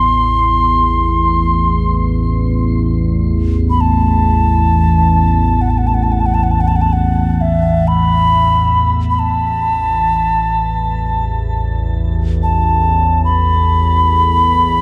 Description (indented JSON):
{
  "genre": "world meditative, free-time meditation music",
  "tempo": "free time",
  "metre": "none",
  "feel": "none",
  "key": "A kumoi",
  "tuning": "A4 = 440 Hz",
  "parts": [
    { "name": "alto ocarina", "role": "melody", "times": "0.0-14.8 s", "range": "E5 to C6", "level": "-17 LUFS", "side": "equal", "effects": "shimmer reverb, diffuse ambient delay" },
    { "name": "analog drone", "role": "drone", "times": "0.0-14.8 s", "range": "A1 to E2", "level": "-16 LUFS", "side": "equal", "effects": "chorus" },
    { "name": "bronze singing bowl", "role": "texture", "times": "0.0-1.5 s", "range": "none", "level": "barely audible", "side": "none", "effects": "none" }
  ],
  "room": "wet cathedral reverb, RT60 4.9 s",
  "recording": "none",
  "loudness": "-14 LUFS",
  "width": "mono",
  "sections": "0.0-14.8 A section",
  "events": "none",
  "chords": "none"
}